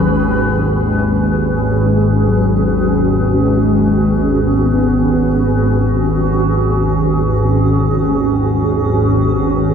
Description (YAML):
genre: dark ambient drone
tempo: free time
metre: none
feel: none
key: unclear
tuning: A4 = 445 Hz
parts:
  - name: mellow horn-like synth lead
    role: melody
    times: 0.0-6.1 s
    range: F#3 to B3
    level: -19 LUFS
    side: left 2 dB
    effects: analog chorus, diffuse ambient delay
  - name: granular cloud pad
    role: sustained chords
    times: 0.0-9.7 s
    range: C#4 to B4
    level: -17 LUFS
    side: right 1 dB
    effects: built-in reverb
  - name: organ-like drone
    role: drone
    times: 0.0-9.7 s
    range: G#1 to D#2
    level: -15 LUFS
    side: equal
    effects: ensemble chorus, built-in reverb
room: wet cathedral reverb, RT60 6.2 s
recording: dark, warm production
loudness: -12 LUFS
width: side -7 dB against mid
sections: 0.0-9.7 A section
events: none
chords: 0.0 G#m